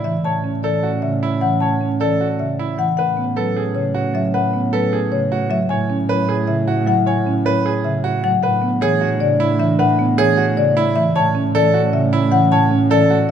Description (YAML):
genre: classical, minimalist pattern music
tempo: 308 BPM (eighths)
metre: 7/8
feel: straight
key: A major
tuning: A4 = 439 Hz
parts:
  - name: marimba with medium mallets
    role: melody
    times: 0.0-13.3 s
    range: B4 to A5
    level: -20 LUFS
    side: left 6 dB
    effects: none
  - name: bright grand piano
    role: arpeggios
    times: 0.0-13.3 s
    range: E4 to C#5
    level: -23 LUFS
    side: right 8 dB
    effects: none
  - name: warm double bass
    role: bass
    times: 0.0-13.3 s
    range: A2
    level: -22 LUFS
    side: right 4 dB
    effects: none
  - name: marimba with soft mallets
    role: accompaniment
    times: 0.1-13.2 s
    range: C#3 to C#4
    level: -22 LUFS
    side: right 1 dB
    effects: none
  - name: mellow French horn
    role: second line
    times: 0.2-13.3 s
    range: C#4 to E4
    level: -25 LUFS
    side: right 2 dB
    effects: none
room: wet scoring stage reverb, RT60 1.6 s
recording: none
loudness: -15 LUFS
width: side -8 dB against mid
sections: 0.0-13.3 A section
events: none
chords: 0.2 Dmaj7/A (rootless); 3.0 Amaj9; 8.4 E9/A; 11.2 Dmaj7/A